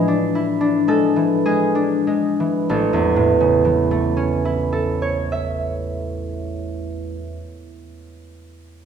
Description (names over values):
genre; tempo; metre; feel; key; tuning
classical, solo harp piece; 46-58 BPM; 3/4; rubato; A major; A4 = 439 Hz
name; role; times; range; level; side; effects
concert harp; solo; 0.0-7.6 s; A1 to E5; -18 LUFS; equal; none
room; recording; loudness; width
wet recital hall reverb, RT60 1.4 s; recorded in a church or concert hall; -17 LUFS; side -7 dB against mid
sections
0.0-2.7 A section; 2.7-6.1 B section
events
slowing down 0.0-2.7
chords
0.0 E7/A; 2.7 A